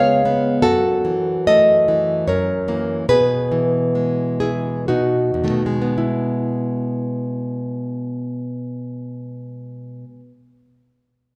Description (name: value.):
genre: romantic piece for solo classical guitar.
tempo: 53-83 BPM.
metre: 3/4.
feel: rubato.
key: E major.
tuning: A4 = 440 Hz.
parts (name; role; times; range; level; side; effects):
nylon-string guitar; solo; 0.0-10.4 s; E2 to E#5; -20 LUFS; equal; none.
room: wet recital hall reverb, RT60 1.5 s.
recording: recorded in a church or concert hall.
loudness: -19 LUFS.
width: mono.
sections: 0.0-6.0 A section; 6.0-8.9 B section.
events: slowing down 0.0-6.0.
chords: 0.0 C#7; 0.6 F#m7; 2.3 F#7; 3.1 E/B; 4.9 B7; 6.0 E.